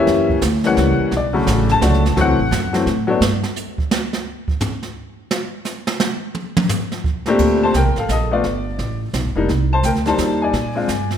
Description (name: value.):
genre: jazz piano trio.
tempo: 172 BPM.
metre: 3/4.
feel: swing 63% on 8ths.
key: D major, Bb major from 7.4 s.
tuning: A4 = 443 Hz.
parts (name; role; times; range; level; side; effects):
clear upright piano; melody; 0.0-3.2, 7.3-11.1 s; Bb2 to A5; -17 LUFS; left 3 dB; none.
upright bass; bass; 0.0-3.4, 7.4-11.2 s; F1 to Bb2; -20 LUFS; right 1 dB; none.
jazz brush drum kit; drums; 0.1-11.2 s; brushed snare drum, crash cymbal, hi-hat, kick drum, snare drum, toms; -22 LUFS; right 3 dB; none.
room: light reverb.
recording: none.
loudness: -16 LUFS.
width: side -9 dB against mid.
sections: 0.0-7.4 A section; 7.4-11.2 B section.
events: upright piano solo 0.0-7.4; drum solo 3.2-7.4.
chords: 0.1 F#7b9; 1.1 Bm9; 2.2 D9 (rootless); 3.2 N.C.; 7.0 Bbmaj13; 7.4 Bbmaj7; 8.4 G5; 9.5 Cm7; 10.5 Bb7.